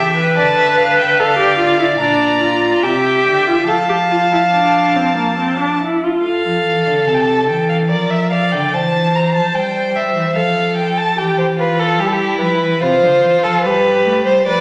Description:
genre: classical, baroque-style fugue for string quartet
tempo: 72 BPM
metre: 3/4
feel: straight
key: F major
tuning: A4 = 440 Hz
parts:
  - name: warm violin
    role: melody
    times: 0.0-14.6 s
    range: G4 to Bb5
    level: -19 LUFS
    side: equal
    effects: none
  - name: dark violin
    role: second line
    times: 0.0-14.6 s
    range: E4 to F5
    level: -20 LUFS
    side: equal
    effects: none
  - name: warm viola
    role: accompaniment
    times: 0.0-6.2 s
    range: Bb3 to B4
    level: -17 LUFS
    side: equal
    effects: none
  - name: warm cello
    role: bass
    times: 0.0-14.6 s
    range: Bb2 to A3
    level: -24 LUFS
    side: equal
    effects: none
room: wet recital hall reverb, RT60 1.4 s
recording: none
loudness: -15 LUFS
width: mono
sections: 0.0-6.2 A section; 6.2-14.6 B section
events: none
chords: 0.4 Bdim/D; 1.2 Dm; 2.0 Bb; 2.8 C; 3.7 F; 7.9 Gm7/F; 8.7 C/E; 10.4 F; 11.2 C/E (rootless); 12.8 Dm7/C; 13.6 G7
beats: 0.36 | 1.18 1.99 2.83 | 3.68 4.53 5.38 | 6.24 7.08 7.91 | 8.73 9.55 10.37 | 11.18 12.00 12.82 | 13.65 14.48

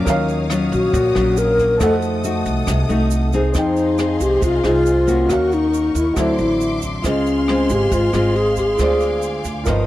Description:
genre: bossa nova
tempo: 138 BPM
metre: 4/4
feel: straight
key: F minor from 3.5 s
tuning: A4 = 440 Hz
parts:
  - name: nylon-string guitar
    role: accompaniment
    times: 0.0-9.9 s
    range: G2 to Ab4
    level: -22 LUFS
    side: left 1 dB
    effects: none
  - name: warm baby grand piano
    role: accompaniment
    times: 0.0-9.9 s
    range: F4 to G5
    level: -27 LUFS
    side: right 2 dB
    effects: none
  - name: warm symphonic string section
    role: sustained chords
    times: 0.0-9.9 s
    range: Ab4 to F6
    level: -28 LUFS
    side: left 1 dB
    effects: none
  - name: upright bass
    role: bass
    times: 0.0-9.9 s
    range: G1 to F2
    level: -22 LUFS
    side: right 1 dB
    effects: none
  - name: jazz brush drum kit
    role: drums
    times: 0.1-9.8 s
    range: hi-hat, kick drum, rim click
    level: -26 LUFS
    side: right 1 dB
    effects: none
  - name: egg shaker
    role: percussion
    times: 0.1-9.9 s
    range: none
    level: -35 LUFS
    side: right 21 dB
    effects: none
  - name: breathy mellow alto flute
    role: melody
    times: 0.7-9.4 s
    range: Db4 to Bb4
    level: -17 LUFS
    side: left 1 dB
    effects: none
room: small room ambience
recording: dry, close 1970s-style studio recording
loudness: -15 LUFS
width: side -15 dB against mid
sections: 0.0-3.5 A section; 3.5-9.9 B section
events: alto flute solo 0.0-3.5; grand piano fill 9.7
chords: 0.1 Ebm9; 1.8 F7b9; 3.5 Fm7; 5.3 Ebm7; 6.2 D9; 7.0 Dbmaj7; 8.8 Dm7b5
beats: | 0.07 0.50 0.94 1.37 | 1.81 2.24 2.68 3.11 | 3.55 3.99 4.42 4.86 | 5.29 5.73 6.17 6.61 | 7.04 7.48 7.92 8.35 | 8.79 9.22 9.66

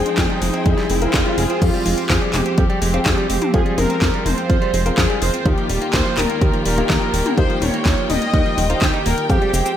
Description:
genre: italo disco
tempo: 125 BPM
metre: 4/4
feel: straight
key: F minor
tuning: A4 = 440 Hz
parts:
  - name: analog synth brass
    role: melody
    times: 0.0-9.8 s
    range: F4 to Eb5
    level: -23 LUFS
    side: equal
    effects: chorus, ping-pong delay
  - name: rich studio string section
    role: sustained chords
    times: 0.0-9.8 s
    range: Eb3 to G5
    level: -25 LUFS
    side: equal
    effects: none
  - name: dark grand piano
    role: stabs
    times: 0.0-9.8 s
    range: Ab3 to G5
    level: -27 LUFS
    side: left 4 dB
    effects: none
  - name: chorused synth bass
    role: bass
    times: 0.0-9.6 s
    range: Eb1 to F2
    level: -22 LUFS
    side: equal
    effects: tube saturation
  - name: riser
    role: sound effects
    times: 0.0-1.6 s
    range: none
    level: -26 LUFS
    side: right 2 dB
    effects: none
  - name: direct-recorded clean electric guitar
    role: arpeggios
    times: 0.1-9.7 s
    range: Eb3 to F4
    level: -27 LUFS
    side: right 4 dB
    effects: vintage 12-bit sampler grit, ping-pong delay
  - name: house drum kit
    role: drums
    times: 0.1-9.8 s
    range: cabasa, crash cymbal, handclaps, hi-hat, snare drum, toms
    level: -23 LUFS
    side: left 1 dB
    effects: overdrive, studio reverb, gated reverb
  - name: electronic kick drum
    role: drums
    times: 0.2-9.4 s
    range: none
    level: -19 LUFS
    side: equal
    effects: overdrive, studio reverb
room: light reverb, digital ambience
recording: none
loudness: -15 LUFS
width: side -10 dB against mid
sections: 0.0-1.6 A section; 1.6-9.8 B section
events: riser 0.0-1.6; filter sweep on grand piano 0.0-1.6; filter sweep on analog polysynth 0.0-1.6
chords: 0.0 Fmadd9; 5.5 Ebadd9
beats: 0.18 0.66 1.14 | 1.62 2.10 2.58 3.06 | 3.54 4.02 4.50 4.98 | 5.46 5.94 6.42 6.90 | 7.38 7.86 8.34 8.82 | 9.30

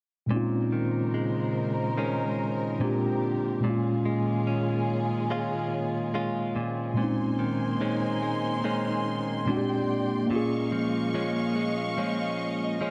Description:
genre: R&B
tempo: 72 BPM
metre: 4/4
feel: swing 58% on 16ths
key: Bb dorian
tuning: A4 = 440 Hz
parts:
  - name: mellow tine electric piano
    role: accompaniment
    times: 0.3-12.9 s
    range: Bb2 to Ab4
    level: -30 LUFS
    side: equal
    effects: none
  - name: warm studio string section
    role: sustained chords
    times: 0.3-12.9 s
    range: Bb2 to Db6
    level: -34 LUFS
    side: equal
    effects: none
  - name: direct-recorded clean electric guitar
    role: arpeggios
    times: 0.3-12.9 s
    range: Bb2 to F4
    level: -34 LUFS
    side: equal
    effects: none
room: light reverb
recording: none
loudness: -28 LUFS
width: mono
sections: 0.3-7.0 A section; 7.0-12.9 B section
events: none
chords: 0.3 Bbm11; 2.8 Bb13; 3.6 Eb9sus4/Bb; 6.6 Bbm11; 9.5 Bb13; 10.3 Eb9sus4/Bb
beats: | 0.30 1.14 1.97 2.81 | 3.64 4.47 5.30 6.14 | 6.97 7.80 8.64 9.47 | 10.30 11.14 11.97 12.80

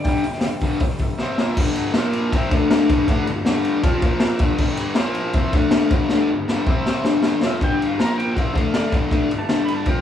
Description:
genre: garage rock duo or trio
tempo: 159 BPM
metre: 4/4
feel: straight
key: G mixolydian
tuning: A4 = 443 Hz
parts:
  - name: electric slide guitar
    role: melody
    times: 0.0-1.3, 7.6-10.0 s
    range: D5 to B5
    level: -29 LUFS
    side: equal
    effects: none
  - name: combo organ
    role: sustained chords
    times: 0.0-10.0 s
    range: Bb3 to A5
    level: -34 LUFS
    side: left 1 dB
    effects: none
  - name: fuzz guitar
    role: riff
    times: 0.0-10.0 s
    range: F2 to F4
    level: -20 LUFS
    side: left 2 dB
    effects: distortion
  - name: raw garage drum kit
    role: drums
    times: 0.0-10.0 s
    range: crash cymbal, hi-hat, kick drum, ride cymbal, snare drum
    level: -20 LUFS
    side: left 1 dB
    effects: none
room: moderate large studio reverb, RT60 1.3 s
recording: band playing live in one room, small room ambience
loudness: -17 LUFS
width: side -10 dB against mid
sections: 0.0-1.6 A section; 1.6-7.6 B section; 7.6-10.0 C section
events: transistor combo organ fill 0.4-1.6; drum fill 1.2-1.6, 6.1-7.6; electric slide guitar solo 7.6-10.0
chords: 0.0 G; 1.2 C5; 1.4 Bb5; 1.6 G; 2.0 Bb5; 2.3 C5; 2.5 D5; 2.9 G; 4.0 Bb5; 4.4 G; 5.0 Bb5; 5.3 C5; 5.5 D5; 5.9 G; 6.7 C5; 7.0 G; 8.0 Bb5; 8.4 Csus4; 8.5 D5; 8.9 G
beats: | 0.06 0.44 0.82 1.20 | 1.57 1.95 2.33 2.71 | 3.09 3.46 3.84 4.22 | 4.59 4.97 5.34 5.72 | 6.10 6.47 6.85 7.23 | 7.60 7.98 8.36 8.74 | 9.11 9.49 9.87

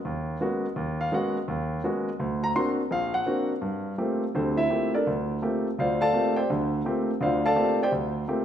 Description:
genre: jazz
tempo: 167 BPM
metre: 4/4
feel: swing 65% on 8ths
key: G dorian from 3.6 s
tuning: A4 = 441 Hz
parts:
  - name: warm concert grand piano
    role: solo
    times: 0.1-8.4 s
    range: A#1 to C6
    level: -24 LUFS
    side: equal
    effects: none
room: moderate recital hall reverb, RT60 1.8 s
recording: recorded in a church or concert hall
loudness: -24 LUFS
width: side -9 dB against mid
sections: 0.0-3.6 A section; 3.6-8.4 A section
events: none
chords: 0.0 Abm11; 2.2 Daug7; 3.6 Gm11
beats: 0.04 0.40 | 0.76 1.12 1.48 1.83 | 2.19 2.55 2.91 3.27 | 3.62 3.98 4.34 4.70 | 5.06 5.42 5.78 6.13 | 6.49 6.85 7.21 7.57 | 7.93 8.29

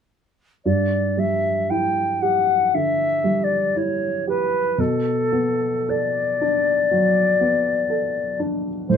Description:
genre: classical, impressionist duo for flute and grand piano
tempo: 52-62 BPM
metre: 4/4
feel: rubato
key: G lydian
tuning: A4 = 440 Hz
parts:
  - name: silver concert flute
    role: melody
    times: 0.6-9.0 s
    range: A4 to G5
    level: -20 LUFS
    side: left 3 dB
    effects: none
  - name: warm baby grand piano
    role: accompaniment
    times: 0.7-9.0 s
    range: G2 to A4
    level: -23 LUFS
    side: right 2 dB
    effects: none
room: moderate studio ambience, RT60 0.5 s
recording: minimal, uncompressed stereo recording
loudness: -18 LUFS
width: side -7 dB against mid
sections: 0.7-9.0 A section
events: none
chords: 0.7 G5; 4.8 Bm7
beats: | 0.65 1.70 2.74 3.76 | 4.78 5.89 6.92 7.90 | 8.88

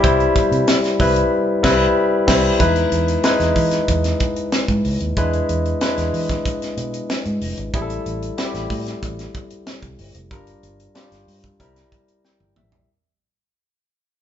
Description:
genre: polished 1980s jazz-funk pop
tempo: 93 BPM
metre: 4/4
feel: straight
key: unclear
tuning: A4 = 440 Hz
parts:
  - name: barky tine electric piano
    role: accompaniment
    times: 0.0-12.9 s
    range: G3 to G5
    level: -19 LUFS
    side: left 2 dB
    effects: overdrive
  - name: vintage muted fingered electric bass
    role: bass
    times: 0.0-12.8 s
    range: F1 to E3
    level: -23 LUFS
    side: right 1 dB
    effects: none
  - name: tight funk drum kit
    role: drums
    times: 0.0-12.9 s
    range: crash cymbal, hi-hat, kick drum, snare drum, toms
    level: -22 LUFS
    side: equal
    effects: none
room: moderate large studio reverb, RT60 1.3 s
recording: band playing live in one room, nothing above 7.8 kHz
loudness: -16 LUFS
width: side -9 dB against mid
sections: 0.0-2.6 A section; 2.6-12.9 B section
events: band accent 1.3-2.6; fade-out 2.6-12.9; tine electric piano fill 11.9-12.9; drum fill 12.2-12.9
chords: 0.0 Cmaj7; 2.6 Emaj7; 5.2 E7; 7.7 Am7; 10.3 Gm7; 11.6 C7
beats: | 0.04 0.68 1.32 1.96 | 2.60 3.24 3.88 4.52 | 5.16 5.81 6.45 7.09 | 7.73 8.38 9.02 9.66 | 10.31 10.95 11.60 12.24

